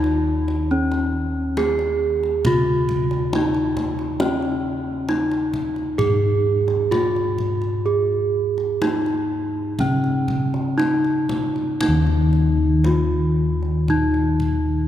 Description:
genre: Javanese gamelan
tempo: 58-68 BPM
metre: 4/4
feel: straight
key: unclear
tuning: A4 = 441 Hz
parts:
  - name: gamelan-type bronze metallophone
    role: melody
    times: 0.0-14.9 s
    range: Db4-45c to Ab4-35c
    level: -21 LUFS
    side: right 1 dB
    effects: none
  - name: gamelan-type bossed gongs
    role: bass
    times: 0.0-14.9 s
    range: Eb2 to Ab4-35c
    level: -22 LUFS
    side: equal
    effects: none
  - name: kendang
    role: percussion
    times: 0.0-14.6 s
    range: none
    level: -29 LUFS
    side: equal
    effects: none
room: wet cathedral reverb, RT60 4.2 s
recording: recorded in a church or concert hall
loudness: -18 LUFS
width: side -11 dB against mid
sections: 0.0-11.8 A section; 11.8-14.9 B section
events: none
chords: none

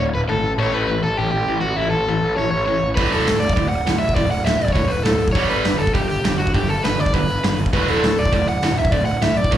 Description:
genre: punk rock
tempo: 202 BPM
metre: 4/4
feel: straight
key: D major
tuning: A4 = 440 Hz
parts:
  - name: crunchy overdriven guitar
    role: melody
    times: 0.0-9.6 s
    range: E4 to F#5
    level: -21 LUFS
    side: equal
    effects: slapback echo
  - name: tight distorted guitar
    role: riff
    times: 0.0-9.6 s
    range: D2 to A3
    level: -26 LUFS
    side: left 7 dB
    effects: distortion, slapback echo
  - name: fuzz picked electric bass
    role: bass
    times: 0.0-9.6 s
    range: D1 to A1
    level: -23 LUFS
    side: equal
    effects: overdrive
  - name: tight distorted guitar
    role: riff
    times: 3.0-9.6 s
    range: D2 to G3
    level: -23 LUFS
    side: right 7 dB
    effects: distortion, slapback echo
  - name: big rock drum kit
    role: drums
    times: 3.0-9.6 s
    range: hi-hat, kick drum, snare drum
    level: -22 LUFS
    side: equal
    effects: none
room: light reverb, studio ambience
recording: live gig heard through the venue's PA, club reverb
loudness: -16 LUFS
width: side -11 dB against mid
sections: 0.0-9.6 A section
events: none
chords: 0.4 A5; 3.0 D5; 5.4 G; 7.7 D

